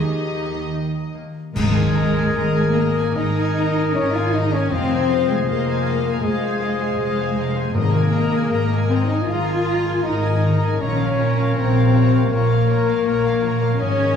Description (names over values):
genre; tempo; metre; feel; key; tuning
cinematic, emotional film score for orchestra; 78 BPM; 4/4; uneven beats, rubato; Ab major; A4 = 440 Hz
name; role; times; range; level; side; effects
warm studio violin section; melody; 0.0-14.2 s; Eb5 to Bb5; -32 LUFS; equal; none
clear clarinet; second line; 0.0-14.2 s; G4 to C5; -28 LUFS; left 6 dB; none
rich studio violin section; second line; 0.0-14.2 s; Ab4 to F5; -36 LUFS; left 3 dB; none
warm studio viola section; accompaniment; 0.0-14.2 s; Eb4 to C5; -34 LUFS; left 2 dB; none
mellow French horn section; sustained chords; 0.0-14.2 s; C3 to F4; -27 LUFS; left 6 dB; none
concert harp; arpeggios; 0.0-14.2 s; F2 to Eb6; -27 LUFS; left 5 dB; none
dark studio cello section; bass; 0.0-14.2 s; Eb3 to F4; -23 LUFS; equal; none
dark studio double bass section; bass; 0.0-14.2 s; F1 to Eb2; -22 LUFS; right 2 dB; none
mellow hollow silver concert flute; second line; 1.6-14.2 s; Ab4 to F5; -28 LUFS; left 4 dB; none
warm oboe; second line; 1.6-14.2 s; Db5 to Eb5; -31 LUFS; equal; none
clash cymbals and concert bass drum; percussion; 1.6-3.1 s; none; -28 LUFS; left 2 dB; none
timpani; percussion; 7.7-8.9 s; Ab2; -25 LUFS; left 3 dB; none
room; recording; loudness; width
moderate scoring stage reverb, RT60 1.9 s; small room ambience; -17 LUFS; side -7 dB against mid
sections
0.0-1.6 A section; 1.6-14.2 B section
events
band accent 1.6-2.3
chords
0.0 Eb; 1.6 Absus2; 4.7 Fm7; 7.7 Absus2; 10.8 Bbm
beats
0.74 | 1.55 2.34 3.16 3.94 | 4.71 5.46 6.23 6.98 | 7.74 8.50 9.28 10.05 | 10.82 11.57 12.32 13.06 | 13.80